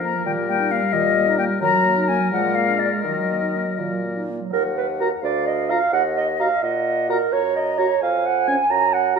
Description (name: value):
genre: quick classical-period movement for wind quintet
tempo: 80-90 BPM (dotted quarters)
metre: 6/8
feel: rubato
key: Eb minor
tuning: A4 = 440 Hz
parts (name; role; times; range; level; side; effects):
- concert flute; melody; 0.0-9.2 s; D5 to Bb5; -23 LUFS; left 9 dB; none
- warm oboe; second line; 0.0-9.2 s; Bb4 to Bb5; -28 LUFS; left 5 dB; none
- dark French horn; accompaniment; 0.0-9.2 s; F3 to Gb4; -27 LUFS; left 1 dB; none
- dark clarinet; accompaniment; 0.0-9.2 s; Eb3 to Bb5; -22 LUFS; right 7 dB; none
- mellow bassoon; bass; 0.0-9.2 s; D2 to Eb3; -26 LUFS; right 2 dB; none
room: wet recital hall reverb, RT60 1.6 s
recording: none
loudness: -18 LUFS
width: side -5 dB against mid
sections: 0.0-4.5 A section; 4.5-9.2 B section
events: none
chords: 0.3 Eb/Bb; 1.6 Ebm/Gb; 2.3 Bb7; 3.0 Ebm; 5.2 Bb/D (rootless); 5.9 Ebm; 7.3 Gb; 8.0 Db/F (rootless)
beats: | 0.27 0.94 | 1.62 2.33 | 3.05 3.79 | 4.53 5.23 | 5.93 6.62 | 7.33 8.02 | 8.71